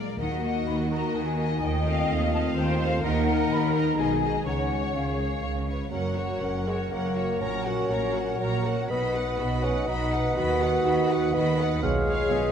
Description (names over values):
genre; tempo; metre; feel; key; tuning
classical, dramatic, fast romantic movement for symphony orchestra; 123 BPM; 3/4; straight; F# major from 3.0 s; A4 = 440 Hz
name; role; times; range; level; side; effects
rich symphonic violin section; melody; 0.0-12.5 s; C#5 to B5; -37 LUFS; left 3 dB; none
dark symphonic violin section; second line; 0.0-12.5 s; Bb3 to F#5; -36 LUFS; left 2 dB; none
dark French horn section; sustained chords; 0.0-12.5 s; Ab3 to C#5; -32 LUFS; left 3 dB; none
concert harp; arpeggios; 0.0-12.5 s; F#2 to F#5; -34 LUFS; left 5 dB; none
rich symphonic cello section; bass; 0.0-12.5 s; F#2 to Eb3; -32 LUFS; right 3 dB; none
rich symphonic double bass section; bass; 0.0-12.5 s; F#1 to Eb2; -31 LUFS; right 3 dB; none
bright large flute ensemble; second line; 0.2-12.5 s; E#5 to B5; -34 LUFS; left 4 dB; none
rich symphonic viola section; accompaniment; 0.2-12.5 s; C#4 to Eb5; -34 LUFS; right 1 dB; none
bright clarinet; second line; 5.9-12.5 s; A#4 to C#5; -36 LUFS; left 3 dB; none
clear oboe; second line; 5.9-12.5 s; C#5 to E#5; -36 LUFS; right 1 dB; none
warm bassoon; accompaniment; 5.9-12.5 s; F#3 to F#4; -29 LUFS; right 2 dB; none
room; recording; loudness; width
wet concert hall reverb, RT60 2.6 s; none; -23 LUFS; side -8 dB against mid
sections
0.0-5.9 A section; 5.9-12.5 B section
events
none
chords
0.2 Ebm; 1.6 F7/Eb; 3.0 D#m; 4.0 G#m/B; 4.5 C#; 5.9 F#; 7.4 F#/A#; 8.9 B; 10.4 B/D#; 11.8 C#7/B